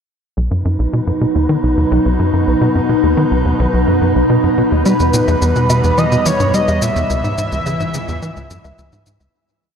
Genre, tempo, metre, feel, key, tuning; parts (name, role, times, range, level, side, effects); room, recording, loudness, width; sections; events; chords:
ambient, sequencer-driven space music; 107 BPM; 4/4; straight; B major; A4 = 439 Hz
evolving wavetable pad; sustained chords; 0.7-9.3 s; C#2 to D#4; -17 LUFS; equal; chorus, built-in reverb, shimmer reverb
tight sequencer bass; riff; 0.4-9.3 s; B1 to G3; -16 LUFS; equal; analog chorus, ping-pong delay
wind-like tuned noise texture; texture; 0.8-9.4 s; B3 to B4; -24 LUFS; left 1 dB; built-in reverb, shimmer reverb
pulse-width lead; melody; 4.9-9.1 s; B4 to E5; -18 LUFS; equal; chorus, shimmer reverb, ping-pong delay
shaker and woodblock; percussion; 4.9-9.3 s; -26 LUFS; left 2 dB
moderate huge ambient reverb, RT60 8.3 s; -12 LUFS; side -7 dB against mid
0.4-9.3 A section
fade-out 6.4-9.3
0.4 B; 4.9 Em; 7.1 C#m